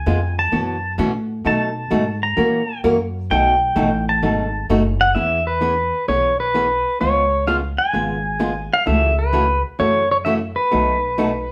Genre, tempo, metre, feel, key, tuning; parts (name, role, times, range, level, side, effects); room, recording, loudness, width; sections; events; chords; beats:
country, western swing; 130 BPM; 4/4; swing 68% on 8ths; E major; A4 = 440 Hz
pedal steel guitar; melody; 0.0-11.5 s; B4 to A#5; -21 LUFS; equal
upright bass; bass; 0.0-11.5 s; F#1 to B2; -26 LUFS; equal
archtop guitar, miked and amplified; accompaniment; 0.1-11.3 s; B2 to A#4; -23 LUFS; equal
wet studio reverb, RT60 0.6 s; band playing live in one room; -19 LUFS; mono
0.0-5.2 A section; 5.2-11.5 B section
pedal steel guitar solo 0.0-5.2
0.0 C#7; 0.5 F#7sus4; 1.5 B7; 2.4 F#7/A#; 3.3 B7; 5.2 E6; 7.0 C#7; 8.9 F#m7/C#; 10.7 B7
0.07 0.53 0.99 | 1.46 1.92 2.38 2.84 | 3.30 3.77 4.23 4.69 | 5.16 5.62 6.08 6.54 | 7.01 7.47 7.94 8.40 | 8.87 9.33 9.79 10.26 | 10.72 11.19